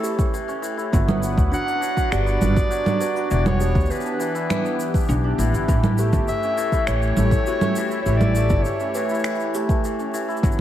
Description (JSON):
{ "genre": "folktronica", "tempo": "101 BPM", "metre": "4/4", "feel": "straight", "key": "unclear", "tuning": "A4 = 440 Hz", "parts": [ { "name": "clear clarinet", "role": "melody", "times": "0.0-9.8 s", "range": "A4 to F#5", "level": "-26 LUFS", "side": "left 1 dB", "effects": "tape echo" }, { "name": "kalimba", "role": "second line", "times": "0.0-9.8 s", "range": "D4 to B4", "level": "-32 LUFS", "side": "right 1 dB", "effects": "diffuse ambient delay" }, { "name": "warm analog pad", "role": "sustained chords", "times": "0.0-10.6 s", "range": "E3 to F#5", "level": "-29 LUFS", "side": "left 1 dB", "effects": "chorus" }, { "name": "hammered dulcimer", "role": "arpeggios", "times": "0.0-10.6 s", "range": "E3 to F#4", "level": "-27 LUFS", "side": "equal", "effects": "tape echo" }, { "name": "electronic shaker, congas and finger snaps", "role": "drums", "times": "0.0-10.6 s", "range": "none", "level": "-26 LUFS", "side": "right 3 dB", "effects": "overdrive" }, { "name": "electronic kick drum", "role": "drums", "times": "0.2-10.6 s", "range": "none", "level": "-21 LUFS", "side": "equal", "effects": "overdrive" }, { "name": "upright bass", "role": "bass", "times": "0.9-10.6 s", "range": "E1 to D2", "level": "-21 LUFS", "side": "equal", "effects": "tube saturation" } ], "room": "moderate plate reverb, RT60 1.5 s, studio ambience", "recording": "dreamy mix soaked in reverb, vinyl crackle", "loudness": "-18 LUFS", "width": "side -11 dB against mid", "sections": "0.0-10.6 A section", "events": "none", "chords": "0.0 A7; 0.9 Gmaj7; 3.3 Em7; 5.7 A7" }